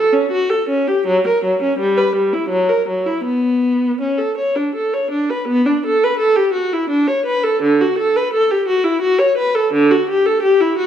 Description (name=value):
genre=classical, baroque-style suite movement for unaccompanied viola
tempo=83 BPM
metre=3/4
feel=uneven beats, rubato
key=B minor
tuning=A4 = 440 Hz
part: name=rich viola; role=solo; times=0.0-10.9 s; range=D3 to C#5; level=-14 LUFS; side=equal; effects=none
room=moderate recital hall reverb, RT60 1.6 s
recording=minimal, uncompressed stereo recording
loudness=-14 LUFS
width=side -9 dB against mid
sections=0.0-5.5 A section; 5.5-10.9 B section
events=none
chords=none